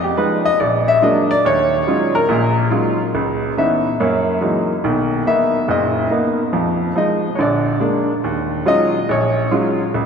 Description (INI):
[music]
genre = solo jazz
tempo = 141 BPM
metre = 4/4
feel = swing 67% on 8ths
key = unclear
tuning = A4 = 438 Hz
[part]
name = clear upright piano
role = solo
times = 0.0-10.1 s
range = F#1 to E5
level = -15 LUFS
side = equal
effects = none
[sound]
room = wet cathedral reverb, RT60 4.8 s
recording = recorded in a church or concert hall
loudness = -15 LUFS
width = side -6 dB against mid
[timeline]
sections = 0.0-10.1 A section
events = upright piano solo 0.0-10.1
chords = 0.0 Fm9b5; 0.6 A#aug7; 1.4 D#m11; 3.1 C#m9; 4.0 F#13; 4.8 Bmaj7; 6.5 Fm7; 7.4 A#7; 8.2 D#m11